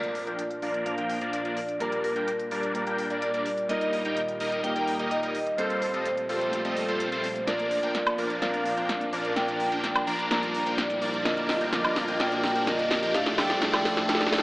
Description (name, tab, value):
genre	EDM, festival progressive house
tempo	127 BPM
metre	4/4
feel	straight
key	Bb major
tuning	A4 = 440 Hz
part	vibraphone with medium hard mallets	melody	0.0-14.4 s	Bb4 to Bb5	-30 LUFS	equal	dub echo
part	dark grand piano	accompaniment	0.0-14.4 s	A2 to Bb4	-33 LUFS	equal	none
part	lush unison pad	sustained chords	0.3-14.4 s	Bb2 to D4	-37 LUFS	equal	chorus
part	supersaw chords	riff	0.0-14.4 s	F3 to G5	-30 LUFS	equal	phaser, low-pass filter
part	big-room dance drum kit	drums	0.0-14.4 s	hi-hat, snare drum, woodblock	-30 LUFS	equal	overdrive
part	riser and swell	sound effects	0.0-14.4 s	none	-37 LUFS	equal	none
room	moderate lush hall reverb, RT60 2.2 s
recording	AM radio sound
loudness	-25 LUFS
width	side -21 dB against mid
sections	0.0-14.4 A section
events	build-up 0.0-14.4; drum fill 7.5-14.4; swell 14.1-14.4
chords	0.0 Bb; 1.8 Gm/Bb; 3.7 Eb/Bb; 5.6 Fadd9/Bb; 7.5 Bb; 13.1 Fadd9